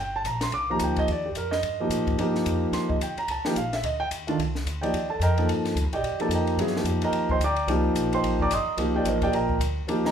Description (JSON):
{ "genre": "modal jazz", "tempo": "218 BPM", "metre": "4/4", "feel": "swing 60% on 8ths", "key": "C dorian", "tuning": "A4 = 441 Hz", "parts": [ { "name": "warm concert grand piano", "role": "accompaniment", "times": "0.0-10.1 s", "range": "Eb3 to Eb6", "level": "-24 LUFS", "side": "right 1 dB", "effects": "none" }, { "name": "upright bass", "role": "bass", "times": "0.0-10.1 s", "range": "G1 to A2", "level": "-30 LUFS", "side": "equal", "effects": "none" }, { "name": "compact cocktail drum kit", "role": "drums", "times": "0.2-10.1 s", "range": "hi-hat, kick drum, ride cymbal, snare drum", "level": "-33 LUFS", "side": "left 3 dB", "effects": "none" } ], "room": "moderate large studio reverb, RT60 1.1 s", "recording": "band playing live in one room", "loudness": "-23 LUFS", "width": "side -8 dB against mid", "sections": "0.0-10.1 A section", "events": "none", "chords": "0.0 Cm9" }